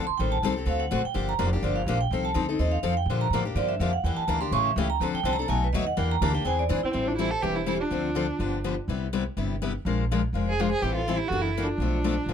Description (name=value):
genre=acoustic string swing (jazz manouche)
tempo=248 BPM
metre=4/4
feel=swing 55% on 8ths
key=A minor from 6.9 s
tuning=A4 = 440 Hz
part: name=vibraphone with medium hard mallets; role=second line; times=0.0-12.3 s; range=E4 to C#6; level=-30 LUFS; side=right 5 dB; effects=none
part: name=picked steel-string acoustic guitar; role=accompaniment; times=0.0-12.3 s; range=B2 to Bb4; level=-28 LUFS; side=left 6 dB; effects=none
part: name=upright bass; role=bass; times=0.0-12.3 s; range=E1 to Bb2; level=-28 LUFS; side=right 1 dB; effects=none
part: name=warm violin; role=melody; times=6.8-12.3 s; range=B#3 to A4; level=-29 LUFS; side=right 2 dB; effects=none
room=light reverb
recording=dark, warm production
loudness=-24 LUFS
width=side -8 dB against mid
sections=0.0-6.9 A section; 6.9-12.3 B section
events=vibraphone solo 0.0-6.9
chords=0.2 Am7b5; 0.7 D7; 1.2 Gm7; 2.1 F7; 3.1 Bb6; 4.0 Em7b5; 4.5 A7; 5.0 Dm7; 5.5 B7; 6.0 Em7b5; 6.5 Eaug7; 6.9 Am7; 7.9 Dm7; 8.4 G7; 8.9 Cmaj7; 9.9 Bb7; 10.8 Am7; 11.3 F#7alt; 11.8 Bm7b5